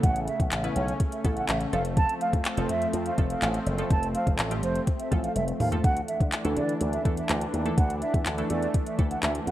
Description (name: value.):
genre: dance-pop.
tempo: 124 BPM.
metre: 4/4.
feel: straight.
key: unclear.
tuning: A4 = 440 Hz.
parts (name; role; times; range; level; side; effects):
mellow concert flute; melody; 0.0-9.5 s; C5 to A5; -31 LUFS; right 2 dB; sidechain pumping.
wavetable chord stab; accompaniment; 0.0-9.3 s; E3 to B4; -37 LUFS; right 1 dB; sidechain pumping.
warm analog pad; sustained chords; 0.0-9.5 s; C#3 to D4; -32 LUFS; equal; chorus, sidechain pumping.
slap bass with an envelope filter; bass; 0.0-9.5 s; F1 to D3; -30 LUFS; equal; sidechain pumping.
smooth R&B drum kit; drums; 0.0-9.5 s; handclaps, hi-hat, kick drum, toms; -26 LUFS; equal; none.
room: moderate plate reverb, RT60 2.5 s.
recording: rough home demo mix.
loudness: -24 LUFS.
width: side -14 dB against mid.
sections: 0.0-9.5 A section.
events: drum fill 5.4-5.8.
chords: 0.0 Aadd9; 1.7 F; 5.8 Dsus2.